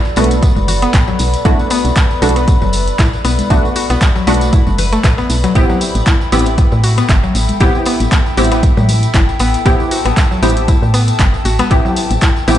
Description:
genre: deep house.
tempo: 117 BPM.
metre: 4/4.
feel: swing 55% on 16ths.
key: unclear.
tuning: A4 = 440 Hz.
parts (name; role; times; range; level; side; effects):
warbly tape-like pad; sustained chords; 0.0-12.6 s; A4 to B5; -22 LUFS; left 2 dB; chorus, built-in reverb, sidechain pumping.
filtered dub chord stab; stabs; 0.0-12.6 s; A3 to G4; -18 LUFS; equal; ensemble chorus, sidechain pumping, tape echo.
tambourine; percussion; 0.0-12.6 s; none; -28 LUFS; right 2 dB; none.
mallet-like synth pluck; arpeggios; 0.2-12.6 s; F#3 to B4; -20 LUFS; left 3 dB; chorus, sidechain pumping, tape echo.
woody FM bass; bass; 0.2-12.6 s; F#1 to A2; -15 LUFS; equal; none.
punchy analog drum machine; drums; 0.2-12.6 s; handclaps, hi-hat; -21 LUFS; equal; none.
congas; percussion; 0.2-12.6 s; none; -25 LUFS; left 2 dB; none.
electronic kick drum; drums; 0.4-12.3 s; none; -13 LUFS; equal; none.
room: light reverb, digital ambience.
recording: played on a big sound system in a bare room, stone room reverb, nothing above 10.6 kHz.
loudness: -10 LUFS.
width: side -12 dB against mid.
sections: 0.0-12.6 A section.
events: none.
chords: 0.0 Bm7; 5.6 Am7.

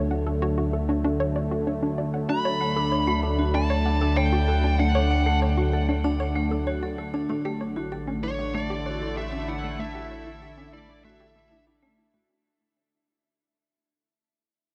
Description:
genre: ambient, sequencer-driven space music.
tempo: 96 BPM.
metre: 4/4.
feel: straight.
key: D major.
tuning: A4 = 440 Hz.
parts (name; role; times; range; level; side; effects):
sweeping resonant pad; sustained chords; 0.0-12.3 s; D3 to A4; -32 LUFS; equal; chorus.
round analog bass; bass; 0.0-12.3 s; A1 to D2; -30 LUFS; equal; none.
hollow square pluck; riff; 0.1-12.2 s; A3 to F#5; -33 LUFS; equal; chorus, tape echo.
bluesy overdriven lead guitar; melody; 2.3-11.6 s; C#5 to B5; -32 LUFS; equal; distortion, tape echo.
vibraphone with hard mallets; arpeggios; 2.3-12.2 s; A3 to A4; -33 LUFS; equal; tape echo.
room: moderate huge ambient reverb, RT60 8.3 s.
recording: cassette tape.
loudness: -25 LUFS.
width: mono.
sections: 0.0-12.3 A section.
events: fade-out 5.6-12.3.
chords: 0.0 D; 7.3 Asus4.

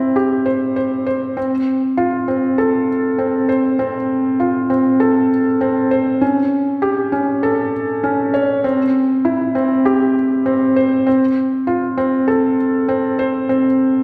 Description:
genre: electronica.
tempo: 99 BPM.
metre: 4/4.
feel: straight.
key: unclear.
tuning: A4 = 443 Hz.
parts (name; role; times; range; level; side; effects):
felt-muted upright piano; solo; 0.0-14.0 s; C4 to C#5; -17 LUFS; equal; none.
room: wet recital hall reverb, RT60 1.5 s.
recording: none.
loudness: -17 LUFS.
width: mono.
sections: 0.0-11.1 A section; 11.1-14.0 B section.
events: build-up 0.0-11.1; drop 11.1-14.0.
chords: none.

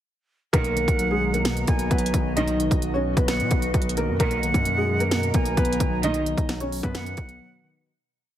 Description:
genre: hip hop, trap.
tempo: 131 BPM.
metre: 4/4.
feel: half-time.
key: B major.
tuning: A4 = 438 Hz.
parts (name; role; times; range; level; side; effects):
felt-muted upright piano; melody; 0.5-7.8 s; G#3 to D#5; -27 LUFS; equal; none.
jazz flute; second line; 0.5-7.8 s; F#5 to G#5; -30 LUFS; right 4 dB; ping-pong delay.
warbly lo-fi synth keys; accompaniment; 0.5-7.9 s; B2 to B3; -30 LUFS; left 1 dB; chorus.
warbly tape-like pad; sustained chords; 1.3-7.8 s; B2 to A#5; -35 LUFS; right 1 dB; chorus, built-in reverb.
clear symphonic string section; stabs; 0.5-6.2 s; B1 to D#3; -32 LUFS; right 4 dB; none.
distorted 808-style bass; bass; 0.5-7.4 s; B1 to B2; -28 LUFS; equal; distortion.
trap drum kit; drums; 0.5-7.4 s; hi-hat, kick drum, snare drum; -24 LUFS; equal; none.
room: small room ambience.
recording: heavily compressed radio sound.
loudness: -21 LUFS.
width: side -11 dB against mid.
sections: 0.5-7.9 hook.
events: fade-out 6.0-7.9; break 7.4-7.9.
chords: 0.5 Bmaj7.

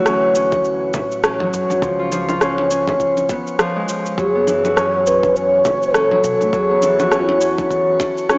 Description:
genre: organic downtempo.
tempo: 102 BPM.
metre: 4/4.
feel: swing 58% on 16ths.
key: F# minor.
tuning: A4 = 440 Hz.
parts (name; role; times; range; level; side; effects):
Celtic harp; arpeggios; 0.0-8.4 s; E3 to F#4; -16 LUFS; equal; analog delay, shimmer reverb.
upright bass; bass; 0.0-7.9 s; F#1 to B2; -30 LUFS; equal; none.
quartz singing bowl; texture; 0.0-8.4 s; none; barely audible; none; none.
electronic rim click and cabasa; drums; 0.1-8.4 s; none; -21 LUFS; equal; cassette tape.
electronic kick drum; drums; 0.5-8.1 s; none; -27 LUFS; equal; cassette tape.
congas; percussion; 0.5-8.1 s; none; -28 LUFS; equal; none.
mellow hollow bass bansuri; melody; 4.2-8.4 s; D4 to C#5; -17 LUFS; equal; analog delay, shimmer reverb.
room: wet lush hall reverb, RT60 2.4 s.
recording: home recording on cassette, small speaker sound.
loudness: -14 LUFS.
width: side -26 dB against mid.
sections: 0.0-8.4 A section.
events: none.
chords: 0.0 Dmaj7; 1.8 C#7; 4.2 F#m11; 6.5 Esus2.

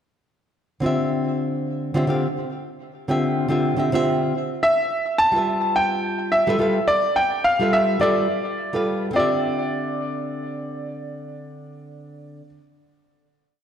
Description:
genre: chillout.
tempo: 106 BPM.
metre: 4/4.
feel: swing 56% on 16ths.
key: D dorian.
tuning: A4 = 440 Hz.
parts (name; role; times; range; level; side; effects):
flamenco guitar; accompaniment; 0.8-12.5 s; D3 to F5; -23 LUFS; equal; auto-pan, tape echo.
clear grand piano; melody; 4.6-12.5 s; D5 to A5; -20 LUFS; equal; tape echo.
room: wet scoring stage reverb, RT60 1.5 s.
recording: none.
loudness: -19 LUFS.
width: side -8 dB against mid.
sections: 0.1-9.2 groove; 9.2-11.4 final chord.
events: none.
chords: 0.1 Dm11; 4.3 G13; 9.2 Dm11.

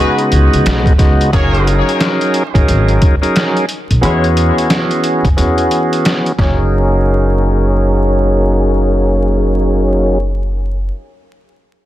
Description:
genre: hip hop, boom-bap hip-hop.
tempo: 89 BPM.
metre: 4/4.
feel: swing 62% on 16ths.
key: F# mixolydian.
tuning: A4 = 438 Hz.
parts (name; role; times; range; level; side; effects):
bright tonewheel organ; accompaniment; 0.0-10.2 s; C#3 to A#4; -14 LUFS; equal; overdrive, slow rotary speaker, cassette tape, high-pass filter, low-pass filter.
clear horn section; stabs; 0.0-10.2 s; G#3 to C#5; -21 LUFS; left 3 dB; high-pass filter, low-pass filter, ping-pong delay.
trip hop sampler-style drum kit; drums; 0.2-6.6 s; hi-hat, kick drum, snare drum; -14 LUFS; equal; none.
upright bass; bass; 0.3-10.9 s; F#1 to F#2; -14 LUFS; equal; none.
room: little or no reverb.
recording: dense, heavily limited modern master, vinyl crackle.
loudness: -10 LUFS.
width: side -14 dB against mid.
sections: 0.0-1.3 A section; 1.3-6.7 B section; 6.7-9.4 C section.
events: filter sweep 1.3-6.7; kick muted 5.4-6.7.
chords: 0.0 B69; 1.3 F#69; 4.0 E6; 6.4 F#69.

